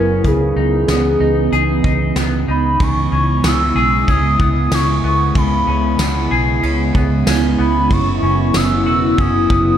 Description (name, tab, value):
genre	dream pop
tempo	94 BPM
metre	4/4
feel	straight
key	C# minor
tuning	A4 = 440 Hz
part	hollow clarinet-like synth lead	melody	0.0-9.8 s	G#4 to E6	-19 LUFS	equal	chorus, analog delay
part	warbly tape-like pad	sustained chords	0.0-9.8 s	C#3 to E4	-18 LUFS	right 1 dB	chorus, built-in reverb, phaser
part	semi-hollow electric guitar	arpeggios	0.0-9.8 s	F#2 to G#4	-23 LUFS	left 2 dB	wide subtle chorus, analog delay
part	vintage muted fingered electric bass	bass	0.0-9.8 s	E1 to C#2	-18 LUFS	equal	none
part	soft brush drum kit	drums	0.2-9.7 s	hi-hat, kick drum, ride cymbal, snare drum, tambourine	-20 LUFS	equal	none
room	moderate plate reverb, RT60 2.7 s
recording	dreamy mix soaked in reverb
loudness	-13 LUFS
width	side -9 dB against mid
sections	0.0-2.8 A section; 2.8-9.8 B section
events	none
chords	0.2 C#m9; 2.8 C#m7; 7.9 F#7sus4